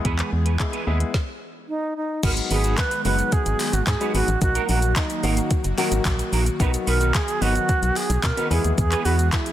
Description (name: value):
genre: dance-pop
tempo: 110 BPM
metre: 4/4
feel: straight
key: G# minor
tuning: A4 = 440 Hz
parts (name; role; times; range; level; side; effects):
- dark baby grand piano; accompaniment; 0.0-9.4 s; D#3 to G#4; -29 LUFS; left 5 dB; sidechain pumping
- airy breathy pad; sustained chords; 0.1-9.5 s; D#3 to G#4; -32 LUFS; left 1 dB; chorus, sidechain pumping
- clean electric guitar; riff; 0.0-9.5 s; A#3 to B4; -30 LUFS; right 8 dB; ensemble chorus
- smooth R&B drum kit; drums; 0.0-9.5 s; crash cymbal, handclaps, hi-hat, kick drum, shaker, snare drum; -25 LUFS; equal; none
- organ-like FM bass; bass; 0.1-9.3 s; F#1 to B2; -22 LUFS; equal; sidechain pumping
- alto flute; melody; 1.7-9.5 s; D#4 to B4; -25 LUFS; right 3 dB; tape echo
- group handclap; percussion; 2.8-9.5 s; none; -35 LUFS; left 2 dB; none
room: light reverb, digital ambience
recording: dense, heavily limited modern master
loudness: -19 LUFS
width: side -12 dB against mid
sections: 0.0-2.2 A section; 2.2-9.5 B section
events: stop 1.1-2.2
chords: 0.0 E; 2.2 G#m7; 4.4 D#m; 6.6 B; 8.5 E